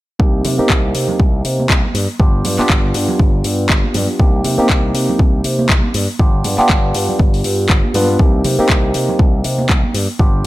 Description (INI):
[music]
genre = filtered disco house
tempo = 120 BPM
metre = 4/4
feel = swing 57% on 16ths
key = C minor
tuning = A4 = 440 Hz
[part]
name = barky tine electric piano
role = accompaniment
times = 0.2-10.5 s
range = Bb3 to B4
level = -18 LUFS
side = equal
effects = phaser, sidechain pumping, low-pass filter
[part]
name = slap bass with an envelope filter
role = bass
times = 0.2-10.5 s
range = G1 to C3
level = -19 LUFS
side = equal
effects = sidechain pumping, low-pass filter
[part]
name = electronic kick drum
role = drums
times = 0.2-10.3 s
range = none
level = -13 LUFS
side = equal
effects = overdrive
[part]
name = tambourine and congas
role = percussion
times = 0.2-10.5 s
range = none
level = -25 LUFS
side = right 3 dB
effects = sidechain pumping on perc, low-pass filter on perc
[part]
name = house drum kit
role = drums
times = 0.4-10.1 s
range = handclaps, hi-hat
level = -20 LUFS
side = left 1 dB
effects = overdrive, sidechain pumping on hats
[sound]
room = digital ambience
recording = none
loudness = -12 LUFS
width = side -17 dB against mid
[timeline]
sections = 0.2-10.5 A section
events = none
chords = 0.2 Cm7; 1.9 G7; 4.2 Cm7; 5.9 G7; 8.2 Cm7; 9.9 G7